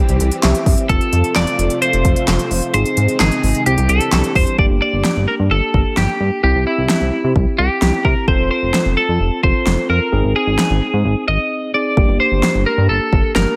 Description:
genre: synth-pop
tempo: 130 BPM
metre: 4/4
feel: straight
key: G dorian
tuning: A4 = 440 Hz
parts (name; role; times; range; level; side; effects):
- tine electric piano; accompaniment; 0.0-13.6 s; Bb3 to E5; -24 LUFS; equal; none
- soft string machine; sustained chords; 0.0-4.6 s; C3 to G4; -27 LUFS; equal; ensemble chorus
- chorused synth bass; bass; 0.1-13.5 s; F1 to C3; -19 LUFS; equal; none
- deep house drum kit; drums; 0.1-13.5 s; handclaps, hi-hat, kick drum, snare drum; -20 LUFS; equal; overdrive, gated reverb
- twelve-string electric guitar; melody; 0.9-13.6 s; E4 to Eb5; -21 LUFS; equal; none
room: light reverb, digital ambience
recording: none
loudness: -16 LUFS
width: mono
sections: 0.0-4.6 A section; 4.6-13.6 B section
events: tine electric piano fill 0.2-0.9; silent gap 11.5-12.0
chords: 0.0 C; 0.9 F; 2.7 Ab; 3.7 Cadd9; 4.6 Gm; 6.4 C; 8.3 F; 10.1 Ab; 12.0 Gm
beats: 0.43 | 0.89 1.36 1.82 2.28 | 2.74 3.20 3.66 4.12 | 4.59 5.05 5.51 5.97 | 6.43 6.89 7.36 7.82 | 8.28 8.74 9.20 9.66 | 10.12 10.59 11.05 11.51 | 11.97 12.43 12.89 13.36

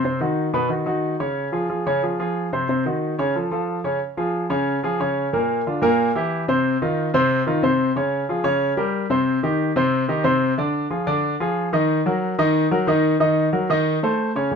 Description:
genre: jazz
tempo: 183 BPM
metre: 4/4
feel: straight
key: unclear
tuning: A4 = 440 Hz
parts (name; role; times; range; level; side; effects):
- warm concert grand piano; solo; 0.0-14.6 s; Bb2 to Eb5; -19 LUFS; equal; none
room: moderate studio reverb, RT60 0.8 s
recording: minimal, uncompressed stereo recording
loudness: -19 LUFS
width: side -6 dB against mid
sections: 0.0-4.0 A section; 4.0-14.5 B section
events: none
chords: 0.0 Cdim; 0.7 Dbsus24; 1.4 Dbmaj7; 2.7 Cdim; 3.4 Faug; 4.0 Db; 5.3 Bb; 6.0 C7; 6.7 F5; 8.0 Db; 8.6 Bbm69; 9.3 Cm; 10.6 Ddim; 11.9 Ebm; 13.9 Adim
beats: | 0.05 0.38 0.71 1.04 | 1.37 1.71 2.04 2.37 | 2.70 3.03 3.36 3.69 | 4.02 4.35 4.68 5.01 | 5.34 5.67 6.00 6.32 | 6.65 6.98 7.31 7.64 | 7.96 8.29 8.62 8.95 | 9.28 9.61 9.93 10.26 | 10.59 10.92 11.24 11.57 | 11.90 12.23 12.56 12.88 | 13.21 13.54 13.87 14.20 | 14.53

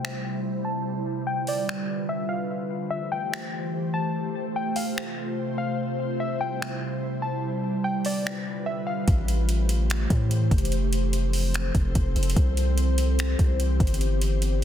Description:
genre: hip hop, atmospheric cloud-rap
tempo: 146 BPM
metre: 4/4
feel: half-time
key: A minor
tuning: A4 = 440 Hz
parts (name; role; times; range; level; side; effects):
- warbly dusty pluck; melody; 0.0-9.1 s; D5 to A5; -32 LUFS; left 2 dB; chorus, low-pass filter, ping-pong delay
- ethereal airy pad; sustained chords; 0.0-14.6 s; C3 to D5; -29 LUFS; equal; ensemble chorus, built-in reverb, sidechain pumping, low-pass filter
- smooth R&B drum kit; drums; 0.0-14.5 s; finger snaps, hi-hat, kick drum; -28 LUFS; equal; soft clipping on snare
- long sustained 808-style bass; bass; 9.1-14.6 s; F1 to A2; -23 LUFS; equal; none
room: light reverb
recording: dense, heavily limited modern master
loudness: -23 LUFS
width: side -10 dB against mid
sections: 0.0-9.1 A section; 9.1-14.6 B section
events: filter sweep 0.0-9.1; drums muted 2.1-2.5, 8.7-9.1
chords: 0.0 C; 0.9 G7; 2.5 Am7; 4.1 F; 5.8 C; 7.4 G7; 9.1 Am7; 10.7 F; 12.4 C; 14.0 G7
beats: 0.04 0.45 | 0.86 1.27 1.68 2.09 | 2.50 2.91 3.32 3.73 | 4.15 4.56 4.97 5.38 | 5.79 6.20 6.61 7.02 | 7.43 7.84 8.26 8.67 | 9.08 9.49 9.90 10.31 | 10.72 11.13 11.54 11.95 | 12.37 12.78 13.19 13.60 | 14.01 14.42

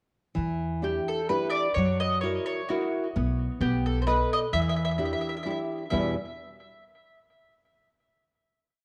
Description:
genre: italian folk, Italian serenade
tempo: 130 BPM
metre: 3/4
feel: swing 54% on 8ths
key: E minor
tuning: A4 = 439 Hz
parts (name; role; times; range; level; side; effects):
- nylon-string guitar; accompaniment; 0.3-6.2 s; E2 to D#5; -31 LUFS; equal; none
- upright bass; bass; 0.4-6.2 s; B1 to F#2; -33 LUFS; equal; none
- mandolin; melody; 0.8-6.1 s; F#4 to E5; -32 LUFS; equal; tape echo
room: moderate echo chamber reverb, RT60 1.3 s, small room ambience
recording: none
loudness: -28 LUFS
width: mono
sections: 0.4-5.9 A section; 5.9-7.3 final chord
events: none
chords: 0.4 Em7; 1.8 F#7; 3.2 N.C.; 3.6 B7; 4.5 Em7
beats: | 0.38 0.84 1.31 | 1.77 2.23 2.70 | 3.16 3.61 4.07 | 4.53 4.99 5.45 | 5.92

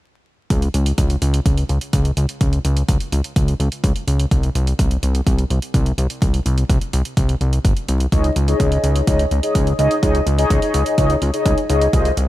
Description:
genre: italo disco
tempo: 126 BPM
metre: 4/4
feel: straight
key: unclear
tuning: A4 = 443 Hz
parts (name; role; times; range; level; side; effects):
- fat analog bass; bass; 0.5-12.3 s; G1 to Db2; -18 LUFS; equal; none
- electronic hi-hat; drums; 0.5-12.3 s; none; -30 LUFS; right 3 dB; none
- electronic kick drum; drums; 0.5-12.0 s; none; -18 LUFS; equal; none
- mellow synth brass; stabs; 8.1-12.1 s; Eb4 to Eb5; -18 LUFS; left 1 dB; chorus, vintage 12-bit sampler grit, tape echo
room: little or no reverb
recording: vinyl crackle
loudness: -15 LUFS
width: side -15 dB against mid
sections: 0.5-12.3 A section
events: none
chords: 0.5 N.C.; 8.1 Dbsus2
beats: | 0.50 0.98 1.46 1.93 | 2.41 2.88 3.36 3.84 | 4.31 4.79 5.27 5.74 | 6.22 6.70 7.17 7.65 | 8.12 8.60 9.08 9.55 | 10.03 10.50 10.98 11.46 | 11.93

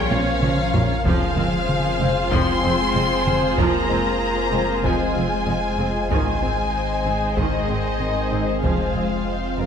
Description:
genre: cinematic, hybrid orchestral and electronic film score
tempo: 95 BPM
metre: 4/4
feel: straight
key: F minor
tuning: A4 = 440 Hz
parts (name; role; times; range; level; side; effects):
- dark symphonic violin section; melody; 0.0-9.7 s; Eb5 to C6; -26 LUFS; left 2 dB; none
- dark symphonic violin section; second line; 0.0-9.7 s; F4 to Db5; -27 LUFS; left 1 dB; none
- rich studio viola section; accompaniment; 0.0-9.7 s; Eb3 to F4; -28 LUFS; right 2 dB; none
- glassy FM pad; sustained chords; 0.0-9.7 s; F3 to F5; -28 LUFS; left 3 dB; ensemble chorus, built-in reverb
- mellow French horn section; sustained chords; 0.0-9.7 s; Eb3 to C4; -28 LUFS; left 3 dB; none
- warm sub bass; bass; 0.0-9.7 s; F1 to Bb1; -29 LUFS; equal; none
- wide unison pluck; arpeggios; 0.1-9.7 s; F3 to F4; -33 LUFS; left 3 dB; none
- warm symphonic cello section; bass; 0.1-9.7 s; F2 to Bb2; -29 LUFS; right 3 dB; none
- warm symphonic double bass section; bass; 0.1-9.7 s; F1 to Bb1; -30 LUFS; right 3 dB; none
- solo taiko drums; drums; 0.1-9.2 s; none; -26 LUFS; equal; none
room: wet recital hall reverb, RT60 1.6 s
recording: none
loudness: -18 LUFS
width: side -7 dB against mid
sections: 0.0-9.7 A section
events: drum fill 0.1-1.1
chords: 0.0 Bbm; 1.1 Fm; 6.1 Ab; 8.6 Fm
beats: 0.42 | 1.05 1.69 2.32 2.95 | 3.58 4.21 4.84 5.48 | 6.11 6.74 7.37 8.00 | 8.63 9.27

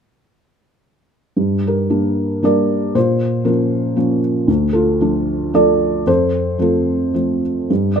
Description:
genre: classical, lyrical solo piano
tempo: 106-118 BPM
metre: 3/4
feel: rubato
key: G minor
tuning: A4 = 442 Hz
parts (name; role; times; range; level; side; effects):
- felt-muted upright piano; solo; 1.4-8.0 s; D2 to D5; -14 LUFS; equal; none
room: light reverb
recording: close, detailed microphones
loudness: -14 LUFS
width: side -7 dB against mid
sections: 1.4-8.0 A section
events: none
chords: 1.4 Gm; 3.0 Bbm; 4.5 Dm; 6.1 F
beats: | 1.37 1.90 2.44 | 2.96 3.47 3.98 | 4.49 5.01 5.54 | 6.07 6.60 7.15 | 7.71

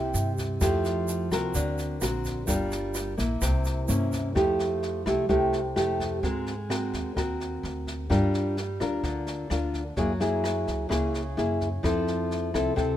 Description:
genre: bossa nova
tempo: 128 BPM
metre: 4/4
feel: straight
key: F major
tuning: A4 = 439 Hz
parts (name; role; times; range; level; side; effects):
- nylon-string guitar; accompaniment; 0.0-13.0 s; C3 to Bb4; -26 LUFS; equal; none
- upright bass; bass; 0.0-13.0 s; G1 to Ab2; -31 LUFS; equal; none
- jazz brush drum kit; drums; 0.1-12.9 s; kick drum, rim click, snare drum; -34 LUFS; equal; none
- egg shaker; percussion; 0.1-4.4 s; none; -38 LUFS; right 7 dB; none
room: little or no reverb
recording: minimal, uncompressed stereo recording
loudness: -25 LUFS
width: side -12 dB against mid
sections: 0.0-4.4 A section; 4.4-13.0 B section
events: none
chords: 0.0 C7; 0.6 Fmaj9; 1.6 Daug7; 2.5 Gm7; 3.4 C7b9; 4.4 Fmaj9; 6.2 Ab9; 8.1 Gm7; 10.0 Gb9; 11.8 Fmaj7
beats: 0.15 | 0.62 1.08 1.55 2.02 | 2.49 2.96 3.42 3.89 | 4.36 4.83 5.29 5.76 | 6.23 6.70 7.16 7.63 | 8.10 8.57 9.03 9.50 | 9.97 10.44 10.90 11.37 | 11.84 12.31 12.78

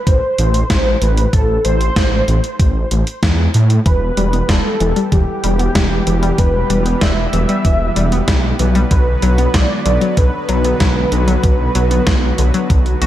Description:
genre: synthwave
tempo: 95 BPM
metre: 4/4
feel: straight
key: E minor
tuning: A4 = 440 Hz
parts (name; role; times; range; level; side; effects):
- wide unison lead; melody; 0.0-13.1 s; G4 to E5; -20 LUFS; equal; ensemble chorus, tape echo
- wide detuned saw bass; bass; 0.1-13.1 s; E1 to A2; -15 LUFS; equal; chorus, sidechain pumping
- electronic kick drum; drums; 0.1-12.8 s; none; -14 LUFS; equal; none
- gated 80s digital drum machine; drums; 0.1-13.1 s; hi-hat, snare drum; -22 LUFS; equal; gated reverb, gated reverb snare
- soft supersaw; sustained chords; 3.9-13.1 s; D3 to B4; -23 LUFS; equal; sidechain pumping
- analog pluck; arpeggios; 3.9-13.1 s; D3 to F#4; -22 LUFS; left 3 dB; chorus, digital delay
room: light reverb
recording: dark, warm production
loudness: -12 LUFS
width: side -12 dB against mid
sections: 0.0-13.1 A section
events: none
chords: 0.0 Am; 3.9 Em; 8.9 Bm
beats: 0.07 0.70 | 1.33 1.96 2.60 3.23 | 3.86 4.49 5.12 5.75 | 6.38 7.02 7.65 8.28 | 8.91 9.54 10.17 10.81 | 11.44 12.07 12.70

